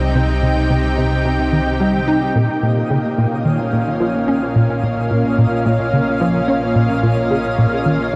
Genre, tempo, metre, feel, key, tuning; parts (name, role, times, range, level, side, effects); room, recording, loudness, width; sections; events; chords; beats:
ambient, sequencer-driven space music; 109 BPM; 4/4; straight; Bb dorian; A4 = 441 Hz
lush unison pad; sustained chords; 0.0-8.2 s; Bb2 to G5; -20 LUFS; equal; chorus, shimmer reverb
warm sub bass; bass; 0.0-8.2 s; Bb1 to C2; -28 LUFS; equal
plucky analog bass; riff; 0.1-8.2 s; Bb2 to Eb4; -20 LUFS; equal; ensemble chorus, tape echo
twinkling granular texture; texture; 2.4-8.2 s; Eb5; -34 LUFS; equal; built-in reverb, shimmer reverb
wet huge ambient reverb, RT60 8.0 s; dark, warm production; -17 LUFS; mono
0.0-2.4 A section; 2.4-8.2 A section
filter sweep on analog synth bass 0.0-2.4
0.0 Cm; 2.4 Bbm
| 0.15 0.70 1.25 1.80 | 2.35 2.90 3.45 4.00 | 4.55 5.10 5.66 6.21 | 6.76 7.31 7.86